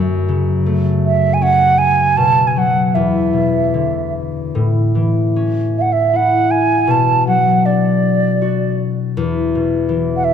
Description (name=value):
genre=celtic folk, Celtic slow air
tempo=77 BPM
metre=3/4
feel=uneven beats, rubato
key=A major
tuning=A4 = 440 Hz
part: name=concert harp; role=accompaniment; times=0.0-10.3 s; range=E2 to F#4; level=-15 LUFS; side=left 3 dB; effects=none
part: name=mellow wooden flute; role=melody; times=1.1-10.3 s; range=D5 to A5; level=-15 LUFS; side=right 5 dB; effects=none
room=moderate concert hall reverb, RT60 2.0 s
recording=none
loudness=-13 LUFS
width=side -8 dB against mid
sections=0.0-10.3 A section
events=none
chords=0.0 F#m; 2.2 B5; 2.9 E5; 4.5 A; 6.9 Bm; 9.2 E5